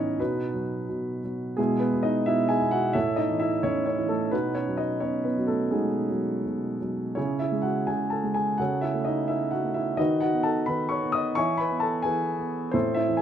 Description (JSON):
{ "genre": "classical, lyrical solo piano", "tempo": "87 BPM", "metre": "4/4", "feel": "rubato", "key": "E major", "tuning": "A4 = 442 Hz", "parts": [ { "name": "dark baby grand piano", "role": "solo", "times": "0.0-13.2 s", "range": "A2 to D#6", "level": "-24 LUFS", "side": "right 1 dB", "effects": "none" } ], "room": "moderate recital hall reverb, RT60 1.5 s", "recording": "none", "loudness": "-24 LUFS", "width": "side -9 dB against mid", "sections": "0.0-13.2 A section", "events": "none", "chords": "0.2 B; 1.6 E/B; 3.0 A; 4.3 B; 7.2 C#m; 8.6 A/C#; 10.0 B/D#; 11.4 E" }